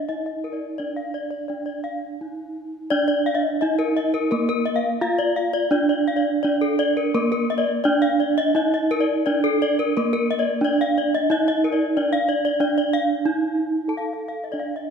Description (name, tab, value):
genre	gamelan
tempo	85-95 BPM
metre	4/4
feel	straight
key	D pelog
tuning	A4 = 439 Hz
part	gamelan-type bronze metallophone	melody	0.0-14.9 s	Bb3 to A4	-22 LUFS	right 4 dB	none
part	gamelan-type bronze metallophone	arpeggios	0.1-14.8 s	A4 to A5	-23 LUFS	left 4 dB	none
room	wet scoring stage reverb, RT60 1.9 s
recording	minimal, uncompressed stereo recording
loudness	-19 LUFS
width	side -6 dB against mid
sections	0.0-2.9 A section; 2.9-13.9 A section; 13.9-14.9 B section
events	break 1.8-2.9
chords	none